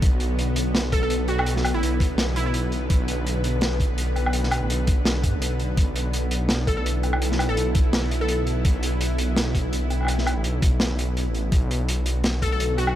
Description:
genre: half-time drum and bass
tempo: 167 BPM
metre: 4/4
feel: swing 55% on 16ths, half-time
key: B minor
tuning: A4 = 440 Hz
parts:
  - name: bowed-like drone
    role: sustained chords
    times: 0.0-13.0 s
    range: D3 to B4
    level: -30 LUFS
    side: equal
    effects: built-in reverb, sidechain pumping
  - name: dark detuned saw bass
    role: bass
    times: 0.0-13.0 s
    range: A1 to G#2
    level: -24 LUFS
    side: equal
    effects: none
  - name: crunchy breakbeat drum kit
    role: drums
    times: 0.0-12.9 s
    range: hi-hat, snare drum, woodblock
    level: -27 LUFS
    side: equal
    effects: none
  - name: electronic kick drum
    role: drums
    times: 0.0-12.5 s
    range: none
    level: -21 LUFS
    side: equal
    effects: none
  - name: glassy wavetable pluck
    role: melody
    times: 0.9-2.5, 6.7-8.5, 12.4-12.9 s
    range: E4 to A4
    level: -30 LUFS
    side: equal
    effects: chorus, dub echo
room: studio reverb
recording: none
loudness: -20 LUFS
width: side -12 dB against mid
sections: 0.0-13.0 A section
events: break 5.4-5.8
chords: 0.0 Bm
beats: | 0.03 0.39 0.75 1.10 | 1.46 1.82 2.18 2.54 | 2.90 3.26 3.62 3.98 | 4.34 4.70 5.06 5.42 | 5.78 6.13 6.49 6.85 | 7.21 7.57 7.93 8.29 | 8.65 9.01 9.37 9.73 | 10.09 10.45 10.81 11.16 | 11.52 11.88 12.24 12.60

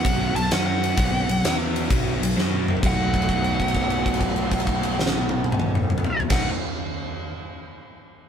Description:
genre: blues rock power trio and southern rock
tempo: 130 BPM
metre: 4/4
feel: swing 67% on 8ths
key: B mixolydian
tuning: A4 = 440 Hz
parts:
  - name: bluesy overdriven lead guitar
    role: melody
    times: 0.0-6.5 s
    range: F#5 to A5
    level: -27 LUFS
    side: equal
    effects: distortion
  - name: raw garage guitar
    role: riff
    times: 0.0-6.5 s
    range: B2 to F#4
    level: -26 LUFS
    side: right 1 dB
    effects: overdrive
  - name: huge arena drum kit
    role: drums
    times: 0.0-6.4 s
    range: crash cymbal, kick drum, ride cymbal, snare drum, toms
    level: -24 LUFS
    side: equal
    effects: none
  - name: fuzz fingered electric bass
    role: bass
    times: 0.1-6.5 s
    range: B1 to F#2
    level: -28 LUFS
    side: equal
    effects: overdrive
room: light reverb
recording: band playing live in one room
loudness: -20 LUFS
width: side -8 dB against mid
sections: 0.0-2.8 A section; 2.8-6.5 B section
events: drum fill 2.4-2.8; held note 2.8-6.2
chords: 0.0 B5; 0.5 F#5; 1.0 B5; 1.4 E5; 1.9 B5; 2.4 F#5; 2.8 B7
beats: 0.04 0.51 | 0.97 1.43 1.90 2.36 | 2.82 3.29 3.75 4.21 | 4.67 5.13 5.60 6.06

